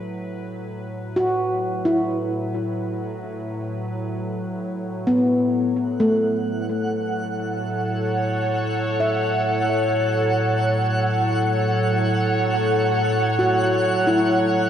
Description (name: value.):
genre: ambient.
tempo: free time.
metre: none.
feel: none.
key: A major.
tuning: A4 = 440 Hz.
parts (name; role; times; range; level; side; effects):
evolving wavetable pad; sustained chords; 0.0-14.7 s; A2 to C#5; -23 LUFS; equal; chorus, built-in reverb.
handpan; arpeggios; 1.2-14.7 s; A3 to E5; -22 LUFS; left 1 dB; analog delay.
twinkling granular texture; texture; 6.3-14.7 s; F#5; -25 LUFS; right 2 dB; built-in reverb.
room: wet lush hall reverb, RT60 2.6 s.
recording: home recording on cassette.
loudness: -19 LUFS.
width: side -9 dB against mid.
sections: 0.0-14.7 A section.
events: fade-in on ambient pad 0.0-14.7.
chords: 0.0 A69.